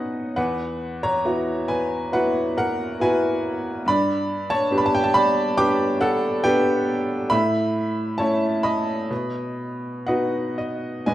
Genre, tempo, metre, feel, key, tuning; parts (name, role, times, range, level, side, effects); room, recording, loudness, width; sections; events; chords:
classical, lyrical solo piano; 60-71 BPM; 4/4; rubato; A4 = 440 Hz
bright upright piano; solo; 0.0-11.1 s; E2 to D6; -20 LUFS; equal
moderate recital hall reverb, RT60 1.4 s; dark, warm production; -20 LUFS; side -14 dB against mid
0.0-11.1 A section
upright piano fill 9.6-11.1
0.4 Esus2; 3.9 G; 7.3 A; 9.1 B